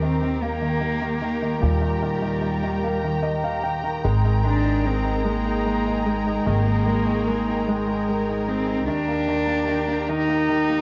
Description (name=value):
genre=pop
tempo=50 BPM (dotted quarters)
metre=6/8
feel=straight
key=Eb major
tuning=A4 = 439 Hz
part: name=dark cello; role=melody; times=0.0-10.8 s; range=G3 to Eb4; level=-27 LUFS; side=equal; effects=slapback echo
part: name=clear concert grand piano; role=accompaniment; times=0.0-10.8 s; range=Bb2 to G5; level=-29 LUFS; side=equal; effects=none
part: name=muted symphonic string section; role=sustained chords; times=0.0-10.8 s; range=G4 to Bb5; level=-32 LUFS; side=equal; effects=none
part: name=upright bass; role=bass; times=0.0-10.8 s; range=Ab1 to Eb2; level=-28 LUFS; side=equal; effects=none
room=moderate echo chamber reverb, RT60 1.4 s, small room reverb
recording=worn, warbling old tape, cassette tape, warbly pitch drift, nothing above 7.6 kHz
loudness=-23 LUFS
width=mono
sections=0.0-10.8 A section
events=grand piano fill 2.8-4.0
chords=0.0 Eb; 4.0 Absus2; 8.9 Eb